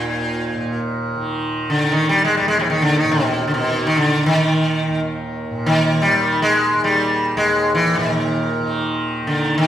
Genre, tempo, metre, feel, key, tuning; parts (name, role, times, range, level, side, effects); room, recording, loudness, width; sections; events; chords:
indian classical, Hindustani; free time; Eb major; A4 = 440 Hz
sitar; melody; 0.0-9.7 s; Bb2 to Ab3; -16 LUFS; equal
tanpura; drone; 0.0-9.7 s; Eb2 to Eb3; -23 LUFS; right 1 dB
wet recital hall reverb, RT60 1.2 s; recorded in a church or concert hall; -16 LUFS; side -10 dB against mid
0.0-9.7 A section